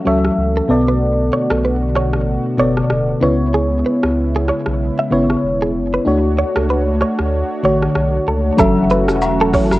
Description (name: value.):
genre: afrobeats.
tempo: 95 BPM.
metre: 4/4.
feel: swing 58% on 16ths.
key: F# minor.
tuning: A4 = 445 Hz.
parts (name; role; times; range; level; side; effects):
mellow FM electric piano; accompaniment; 0.0-9.8 s; B2 to E5; -16 LUFS; left 1 dB; chorus.
warm analog pad; sustained chords; 0.0-9.8 s; C#3 to C#5; -23 LUFS; right 1 dB; chorus.
direct-recorded clean electric guitar; riff; 0.0-9.7 s; G#4 to E5; -20 LUFS; right 2 dB; wide subtle chorus, tape echo.
warm sub bass; bass; 0.1-9.8 s; D1 to D2; -20 LUFS; equal; none.
deep house drum kit; drums; 0.2-9.8 s; hi-hat, kick drum, rim click, shaker; -22 LUFS; equal; overdrive, vintage 12-bit sampler grit.
agogo bells and woodblock; percussion; 8.6-9.8 s; none; -24 LUFS; left 2 dB; none.
room: light reverb, digital ambience.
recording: home recording on cassette.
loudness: -14 LUFS.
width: side -17 dB against mid.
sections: 0.0-8.6 A section; 8.6-9.8 B section.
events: kick muted 7.3-8.6.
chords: 0.0 F#m7; 0.7 Bm7; 3.2 C#m7; 6.1 Dmaj7; 8.6 F#m7.